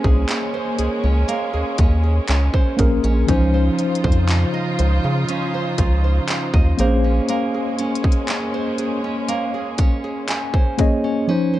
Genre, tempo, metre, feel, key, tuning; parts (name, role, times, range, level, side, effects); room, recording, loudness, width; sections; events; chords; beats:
contemporary R&B; 60 BPM; 4/4; straight; Bb minor; A4 = 440 Hz
mellow tine electric piano; accompaniment; 0.0-11.6 s; E3 to Ab5; -23 LUFS; left 2 dB; medium stereo tremolo
warm studio string section; sustained chords; 0.0-11.2 s; Db3 to C5; -27 LUFS; equal
nylon-string guitar; arpeggios; 0.0-11.6 s; Bb3 to Eb5; -26 LUFS; right 5 dB; tape echo
rubbery square bass; bass; 0.0-7.2 s; Bb1 to Db3; -18 LUFS; equal
trap drum kit; drums; 0.0-11.0 s; handclaps, hi-hat, kick drum; -19 LUFS; equal; vintage 12-bit sampler grit
little or no reverb; dark, warm production; -17 LUFS; side -14 dB against mid
0.0-11.6 A section
tine electric piano fill 9.8-11.3
0.0 Bbm9; 3.3 Dbmaj9; 6.8 Bbm9
0.29 1.29 2.29 | 3.29 4.29 5.29 6.29 | 7.29 8.29 9.29 10.29 | 11.29